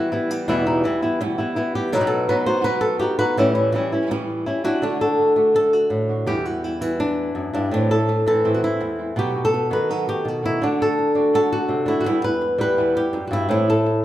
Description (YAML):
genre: flamenco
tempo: 166 BPM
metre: 4/4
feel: straight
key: E harmonic minor, E minor from 4.8 s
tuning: A4 = 440 Hz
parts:
  - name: flamenco guitar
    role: melody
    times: 0.0-14.0 s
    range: E2 to C5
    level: -19 LUFS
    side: equal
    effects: none
  - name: flamenco guitar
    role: stabs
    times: 0.0-13.9 s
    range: E2 to F#4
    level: -27 LUFS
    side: right 2 dB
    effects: none
room: wet large studio reverb, RT60 1.1 s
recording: band playing live in one room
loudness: -18 LUFS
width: side -13 dB against mid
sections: 0.0-4.8 A section; 4.8-14.0 B section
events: none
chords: 0.0 Em; 1.9 B; 3.4 A7; 4.8 D; 6.3 Em; 7.7 Am; 9.2 B; 10.6 D; 12.1 Em; 13.5 Am